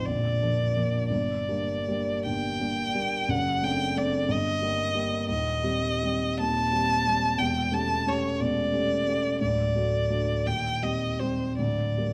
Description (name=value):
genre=classical, romantic duo for violin and grand piano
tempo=49-62 BPM (dotted quarters)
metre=6/8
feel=rubato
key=unclear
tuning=A4 = 440 Hz
part: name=rich violin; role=melody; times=0.0-12.1 s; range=C5 to A5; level=-30 LUFS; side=equal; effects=none
part: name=warm grand piano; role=accompaniment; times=0.0-12.1 s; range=Bb0 to G4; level=-30 LUFS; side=equal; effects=none
room=moderate recital hall reverb, RT60 1.4 s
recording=close, detailed microphones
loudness=-27 LUFS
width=mono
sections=0.0-12.1 A section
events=none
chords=0.1 Bb; 1.1 Gm; 3.3 D7/F#; 4.3 Gm; 5.3 Cm/Eb; 7.4 A7/E; 9.4 D; 10.4 Cm/Eb; 11.6 Gm/D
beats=0.06 | 1.10 2.26 | 3.29 4.29 | 5.28 6.39 | 7.37 8.40 | 9.41 10.45 | 11.57